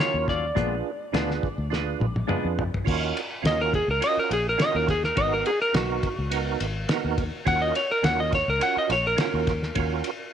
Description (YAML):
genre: straight-eighth soul blues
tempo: 104 BPM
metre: 4/4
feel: straight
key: Eb minor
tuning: A4 = 439 Hz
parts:
  - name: clean lap steel guitar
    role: melody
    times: 0.0-10.3 s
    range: Gb4 to Gb5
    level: -25 LUFS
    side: left 1 dB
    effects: none
  - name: percussive tonewheel organ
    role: accompaniment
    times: 0.0-10.1 s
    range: Cb4 to Cb5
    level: -30 LUFS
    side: right 14 dB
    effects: slow rotary speaker, chorus vibrato
  - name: direct-recorded clean electric guitar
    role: stabs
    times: 0.0-2.5 s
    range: Bb2 to F4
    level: -32 LUFS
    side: left 13 dB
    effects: phaser
  - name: cloth-damped thuddy drum kit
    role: drums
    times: 0.0-10.2 s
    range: crash cymbal, hi-hat, kick drum, ride cymbal, snare drum, toms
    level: -28 LUFS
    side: left 1 dB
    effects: none
  - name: fingered electric bass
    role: bass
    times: 0.1-10.0 s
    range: Ab1 to F2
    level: -29 LUFS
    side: left 1 dB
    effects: none
room: light reverb, small room reverb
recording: 1960s-style stereo with parts hard left and right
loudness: -22 LUFS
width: side -9 dB against mid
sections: 0.0-2.9 A section; 2.9-10.3 B section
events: drum fill 1.7-2.9; electric slide guitar solo 2.9-10.3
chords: 0.0 Ebm9; 0.6 Bb7b9; 2.9 Ebm9; 5.2 Abm9; 7.5 Ebm9